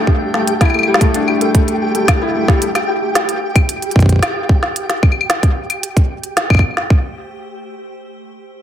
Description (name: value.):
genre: IDM.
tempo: 112 BPM.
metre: 4/4.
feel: straight.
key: unclear.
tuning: A4 = 440 Hz.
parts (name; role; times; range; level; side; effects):
felt-muted upright piano; arpeggios; 0.0-2.6 s; G3 to A4; -18 LUFS; left 2 dB; tape echo.
flickering grainy texture; texture; 0.0-6.9 s; G4 to G5; -23 LUFS; right 1 dB; built-in reverb, sidechain pumping.
electronic kick drum; drums; 0.1-7.0 s; none; -12 LUFS; equal; none.
organic electronic drum kit; drums; 0.3-6.9 s; claves, hi-hat, snare drum; -18 LUFS; left 1 dB; dub echo.
room: moderate spring reverb, RT60 1.9 s.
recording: echo-heavy mix.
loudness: -12 LUFS.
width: side -10 dB against mid.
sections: 0.0-6.9 A section; 6.9-8.6 B section.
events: none.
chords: 0.0 Gsus2; 2.6 N.C.; 6.9 Am7.